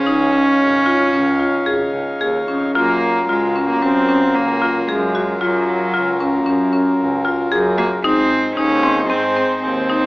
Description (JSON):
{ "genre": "contemporary instrumental, chamber music in an uneven meter", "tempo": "113 BPM", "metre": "5/4", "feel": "straight", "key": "unclear", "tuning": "A4 = 440 Hz", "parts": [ { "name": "rich cello", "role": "melody", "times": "0.0-10.1 s", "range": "Gb3 to Db4", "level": "-19 LUFS", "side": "right 1 dB", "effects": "none" }, { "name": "pedal harmonium", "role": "sustained chords", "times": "0.0-10.1 s", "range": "Gb3 to F5", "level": "-22 LUFS", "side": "equal", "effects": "none" }, { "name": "marimba with hard mallets", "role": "arpeggios", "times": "0.1-10.1 s", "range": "C4 to Ab4", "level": "-18 LUFS", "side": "left 1 dB", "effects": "none" }, { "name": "rich double bass", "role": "bass", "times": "0.1-10.0 s", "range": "Ab1 to Ab2", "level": "-25 LUFS", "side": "right 1 dB", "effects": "none" } ], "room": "moderate recital hall reverb, RT60 1.3 s", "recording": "AM radio sound", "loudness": "-14 LUFS", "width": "side -23 dB against mid", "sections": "0.0-2.7 A section; 2.7-10.1 B section", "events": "none", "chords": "0.1 Dbadd9; 2.7 Gbmaj7; 8.0 Ab" }